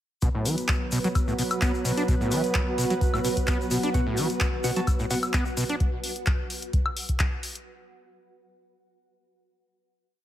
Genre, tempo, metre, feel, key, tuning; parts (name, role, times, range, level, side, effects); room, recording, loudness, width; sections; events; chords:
acid house; 129 BPM; 4/4; straight; A4 = 440 Hz
warm analog pad; sustained chords; 0.2-5.8 s; F#3 to B4; -31 LUFS; right 1 dB; lush chorus, sidechain pumping
overdriven acid bass; riff; 0.2-5.8 s; A2 to D4; -29 LUFS; equal; distortion, analog chorus, sidechain pumping, digital delay
electronic kick drum; drums; 0.2-7.3 s; -26 LUFS; equal
punchy analog drum machine; drums; 0.2-7.6 s; handclaps, hi-hat, woodblock; -31 LUFS; left 1 dB; overdrive
egg shaker; percussion; 0.2-5.8 s; -37 LUFS; left 3 dB
granular cloud pad; texture; 0.9-5.8 s; F#4 to F#5; -33 LUFS; right 2 dB; built-in reverb, sidechain pumping
percussive organ stab; stabs; 3.9-5.2 s; B3 to A5; -34 LUFS; left 2 dB; chorus, digital delay
light reverb, digital ambience; -23 LUFS; side -12 dB against mid
0.2-7.7 groove
0.2 B5